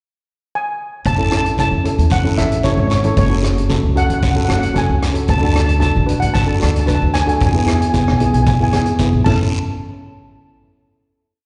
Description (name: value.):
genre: calypso.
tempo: 113 BPM.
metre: 4/4.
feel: straight.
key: A major.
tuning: A4 = 440 Hz.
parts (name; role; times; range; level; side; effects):
steel pan; melody; 0.6-9.5 s; C#5 to A5; -24 LUFS; equal; slapback echo.
guiro; percussion; 1.0-9.5 s; none; -33 LUFS; equal; slapback echo.
upright bass; bass; 1.1-9.5 s; F#1 to E2; -20 LUFS; equal; none.
street-band drum kit; drums; 1.1-9.4 s; crash cymbal, hi-hat, kick drum, rim click; -21 LUFS; equal; none.
steel pan; accompaniment; 1.2-9.5 s; B3 to B4; -23 LUFS; equal; slapback echo.
room: light reverb, small room ambience.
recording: live gig heard through the venue's PA, recital hall reverb, nothing above 10.5 kHz.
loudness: -16 LUFS.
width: mono.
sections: 0.0-1.1 pickup bar; 1.1-9.5 verse; 9.5-11.5 final hit.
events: none.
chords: 0.0 N.C.; 1.1 A; 3.2 F#m; 5.3 D6; 7.4 E; 9.3 A; 9.5 N.C..